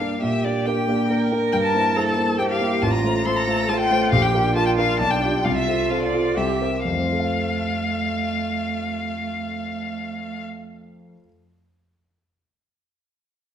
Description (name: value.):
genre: quick classical-period movement for piano trio.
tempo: 123-140 BPM.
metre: 3/4.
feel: straight.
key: F major.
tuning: A4 = 439 Hz.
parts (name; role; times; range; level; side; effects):
rich violin; melody; 0.0-10.4 s; D5 to C6; -24 LUFS; left 4 dB; none.
warm cello; second line; 0.0-10.4 s; A3 to Bb4; -26 LUFS; right 6 dB; none.
warm concert grand piano; accompaniment; 0.0-11.3 s; A1 to F5; -23 LUFS; equal; none.
room: wet recital hall reverb, RT60 1.4 s.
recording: none.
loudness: -19 LUFS.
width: side -9 dB against mid.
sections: 0.0-6.8 A section; 6.8-9.7 B section.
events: slowing down 3.5-6.8.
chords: 0.2 Gm/Bb; 1.5 C7/G; 2.8 F/A; 4.1 Bb; 5.0 G7/B; 5.4 F/C; 6.4 C7; 6.8 F.